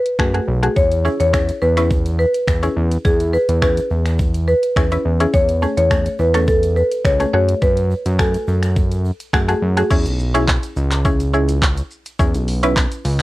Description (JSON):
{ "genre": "dance-pop", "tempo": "105 BPM", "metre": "4/4", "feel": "straight", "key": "E major", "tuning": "A4 = 440 Hz", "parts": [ { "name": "marimba with medium hard mallets", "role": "melody", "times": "0.0-9.6 s", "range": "G#4 to C#5", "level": "-19 LUFS", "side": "equal", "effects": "cassette tape" }, { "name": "pop drum kit", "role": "drums", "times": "0.1-13.2 s", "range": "crash cymbal, finger snaps, handclaps, hi-hat, kick drum, shaker", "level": "-19 LUFS", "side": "equal", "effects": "overdrive, cassette tape" }, { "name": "mallet-like synth pluck", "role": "accompaniment", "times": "0.2-13.0 s", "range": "A3 to G#5", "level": "-21 LUFS", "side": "equal", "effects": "chorus, sidechain pumping" }, { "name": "fat analog bass", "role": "bass", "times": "0.2-13.2 s", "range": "B1 to F#2", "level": "-18 LUFS", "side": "equal", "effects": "sidechain pumping" }, { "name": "egg shaker", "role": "percussion", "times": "0.8-13.2 s", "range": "none", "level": "-45 LUFS", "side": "right 6 dB", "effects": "none" } ], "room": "little or no reverb", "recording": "home recording on cassette, faint mains hum", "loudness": "-15 LUFS", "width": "side -18 dB against mid", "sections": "0.0-9.9 A section; 9.9-13.2 B section", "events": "none", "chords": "0.0 F#madd9; 0.8 E6; 5.3 Amaj7/E; 7.3 F#madd9; 9.9 E6" }